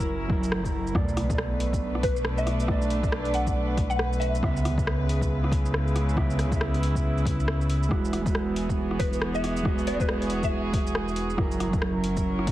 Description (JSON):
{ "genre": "future garage", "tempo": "138 BPM", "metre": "4/4", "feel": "swing 61% on 16ths", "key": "B dorian", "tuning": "A4 = 440 Hz", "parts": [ { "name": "mellow electric guitar", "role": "accompaniment", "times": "0.0-12.5 s", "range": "B2 to E5", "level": "-30 LUFS", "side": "right 2 dB", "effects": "vintage 12-bit sampler grit, sidechain pumping, tape echo" }, { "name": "rich chamber string section", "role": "sustained chords", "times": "0.0-12.5 s", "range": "B2 to B4", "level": "-31 LUFS", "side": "equal", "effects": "sidechain pumping" }, { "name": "warm sub bass", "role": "bass", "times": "0.0-12.5 s", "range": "E1 to C#2", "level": "-30 LUFS", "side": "equal", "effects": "tube saturation, sidechain pumping" }, { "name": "deep house drum kit", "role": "drums", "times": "0.0-12.5 s", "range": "hi-hat, rim click, shaker", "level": "-33 LUFS", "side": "equal", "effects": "overdrive, small room reverb" }, { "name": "electronic kick drum", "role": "drums", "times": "0.0-12.5 s", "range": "none", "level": "-29 LUFS", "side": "equal", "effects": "overdrive, small room reverb" }, { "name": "sub drop", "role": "sound effects", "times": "1.0-2.7 s", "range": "none", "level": "-36 LUFS", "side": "left 1 dB", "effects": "none" }, { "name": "mallet-like synth pluck", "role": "melody", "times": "2.0-4.5, 9.0-11.0 s", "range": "B4 to F#5", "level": "-32 LUFS", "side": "left 1 dB", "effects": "ensemble chorus, tape echo" } ], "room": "moderate recital hall reverb, RT60 1.5 s", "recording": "heavily compressed radio sound, cassette tape", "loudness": "-23 LUFS", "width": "side -14 dB against mid", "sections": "1.0-12.5 A section", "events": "band accent 0.5; impact 1.0-2.7", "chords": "0.0 F#7; 1.0 Bm7; 4.4 C#m7; 7.9 Eadd9; 11.4 F#7" }